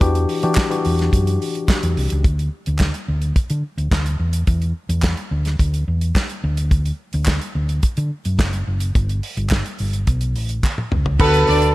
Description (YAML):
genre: disco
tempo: 107 BPM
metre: 4/4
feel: straight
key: unclear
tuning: A4 = 443 Hz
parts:
  - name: tine electric piano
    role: accompaniment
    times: 0.0-2.3, 11.2-11.7 s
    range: D3 to B4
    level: -21 LUFS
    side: left 3 dB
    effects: none
  - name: hollow-body short-scale fingered electric bass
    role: bass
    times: 0.0-11.7 s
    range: F#1 to E3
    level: -19 LUFS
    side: equal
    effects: none
  - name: damped 70s drum kit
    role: drums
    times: 0.0-11.7 s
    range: crash cymbal, hi-hat, kick drum, snare drum, toms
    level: -20 LUFS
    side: equal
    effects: none
  - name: group handclap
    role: percussion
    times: 0.6-10.8 s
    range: none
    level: -30 LUFS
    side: right 1 dB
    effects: none
  - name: clear grand piano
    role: melody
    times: 11.2-11.7 s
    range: A4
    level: -16 LUFS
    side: right 2 dB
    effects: none
  - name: warm studio violin section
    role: second line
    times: 11.2-11.6 s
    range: B3 to D5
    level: -20 LUFS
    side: left 1 dB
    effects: tape echo
room: little or no reverb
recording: lossy compression artefacts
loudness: -17 LUFS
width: side -18 dB against mid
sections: 0.0-2.2 A section; 2.2-11.2 B section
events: drum fill 10.6-11.2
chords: 0.0 Em9; 2.2 N.C.; 4.2 Dsus2; 6.4 D; 9.0 G; 11.2 D6